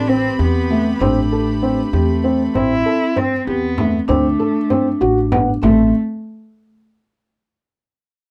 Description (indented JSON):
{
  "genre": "contemporary instrumental, chamber music in an uneven meter",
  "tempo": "195 BPM (eighths)",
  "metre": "5/8",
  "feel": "straight",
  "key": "A minor",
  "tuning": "A4 = 441 Hz",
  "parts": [
    { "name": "dark cello", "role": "melody", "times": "0.0-5.9 s", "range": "A3 to E4", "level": "-24 LUFS", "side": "equal", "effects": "none" },
    { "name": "vibraphone with medium mallets", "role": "second line", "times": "0.0-5.9 s", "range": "C4 to D4", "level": "-23 LUFS", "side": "equal", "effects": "none" },
    { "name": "rich chamber string section", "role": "sustained chords", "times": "0.0-2.5 s", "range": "G4 to B5", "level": "-33 LUFS", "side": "equal", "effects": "none" },
    { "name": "upright bass", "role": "bass", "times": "0.0-5.9 s", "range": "A1 to E2", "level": "-23 LUFS", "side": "equal", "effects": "none" },
    { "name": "felt-muted upright piano", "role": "arpeggios", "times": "0.1-5.9 s", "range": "A3 to A4", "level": "-21 LUFS", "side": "equal", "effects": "none" },
    { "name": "frame drum", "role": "percussion", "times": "0.4-5.9 s", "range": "none", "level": "-27 LUFS", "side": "equal", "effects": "none" }
  ],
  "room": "moderate booth ambience, RT60 0.2 s",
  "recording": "none",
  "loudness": "-17 LUFS",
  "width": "mono",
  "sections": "0.0-2.5 A section; 2.5-5.6 B section; 5.6-7.2 C section",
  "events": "none",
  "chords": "0.0 Am9; 2.5 Amadd9; 4.1 D5; 5.6 N.C."
}